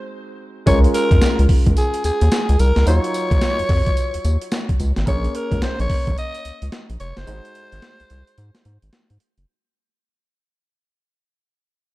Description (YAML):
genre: R&B, new jack swing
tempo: 109 BPM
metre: 4/4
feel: swing 62% on 16ths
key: Db major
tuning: A4 = 442 Hz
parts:
  - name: raspy alto saxophone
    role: melody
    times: 0.0-8.9 s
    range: Ab4 to Eb5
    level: -24 LUFS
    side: equal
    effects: none
  - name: clear baby grand piano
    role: accompaniment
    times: 0.0-9.5 s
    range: Gb3 to Db5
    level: -26 LUFS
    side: right 1 dB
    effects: none
  - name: round analog bass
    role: bass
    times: 0.7-9.5 s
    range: F1 to Ab2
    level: -17 LUFS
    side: equal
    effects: none
  - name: breakbeat sampler-style drum kit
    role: drums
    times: 0.7-9.5 s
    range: hi-hat, kick drum, snare drum, tambourine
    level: -20 LUFS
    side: equal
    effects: none
room: digital ambience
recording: dark, warm production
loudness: -16 LUFS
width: side -18 dB against mid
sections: 0.7-9.5 A section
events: break 0.0-0.7, 7.3-9.5; fade-out 0.7-9.5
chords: 0.0 Ab7; 0.7 Db6; 2.9 Ebm9; 5.1 Bbm7; 7.3 Ab7